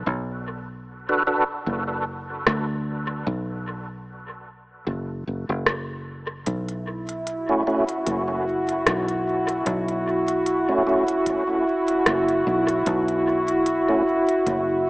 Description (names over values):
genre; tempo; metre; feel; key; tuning
ambient dub; 75 BPM; 4/4; swing 55% on 16ths; B minor; A4 = 440 Hz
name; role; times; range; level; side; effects
fingered electric bass; bass; 0.0-14.9 s; F#1 to D2; -29 LUFS; equal; none
electronic kick drum; drums; 0.1-14.6 s; none; -43 LUFS; equal; none
tonewheel organ; stabs; 1.1-1.4, 7.5-14.0 s; A3 to B4; -26 LUFS; equal; overdrive, chorus vibrato, slow rotary speaker, dub echo
organic electronic drum kit; drums; 2.5-14.6 s; hi-hat, rim click; -27 LUFS; equal; dub echo
warbly tape-like pad; sustained chords; 6.9-14.9 s; E4 to F#4; -21 LUFS; equal; chorus, built-in reverb
room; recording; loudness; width
wet concert hall reverb, RT60 2.3 s; small speaker sound; -21 LUFS; side -22 dB against mid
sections
0.0-14.9 A section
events
none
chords
0.0 Bm; 6.5 F#m7